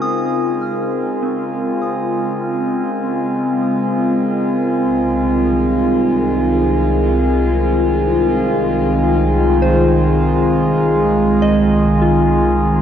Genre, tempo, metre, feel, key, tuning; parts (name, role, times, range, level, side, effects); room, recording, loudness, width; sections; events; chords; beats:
ambient; 50 BPM; 4/4; straight; Bb minor; A4 = 437 Hz
warbly tape-like pad; sustained chords; 0.0-12.8 s; C2 to Bb4; -14 LUFS; equal; chorus, built-in reverb, phaser
soft synth bell; arpeggios; 0.0-12.8 s; C4 to F6; -24 LUFS; equal; chorus, tape echo
glass harmonica; texture; 0.0-12.8 s; Ab5; -26 LUFS; right 2 dB
wet lush hall reverb, RT60 2.6 s; dark, warm production, nothing above 7.7 kHz; -14 LUFS; side -9 dB against mid
0.0-12.8 A section
0.0 Bbm9; 4.8 Fm7/C
| 0.02 1.22 2.42 3.62 | 4.82 6.02 7.22 8.42 | 9.62 10.82 12.02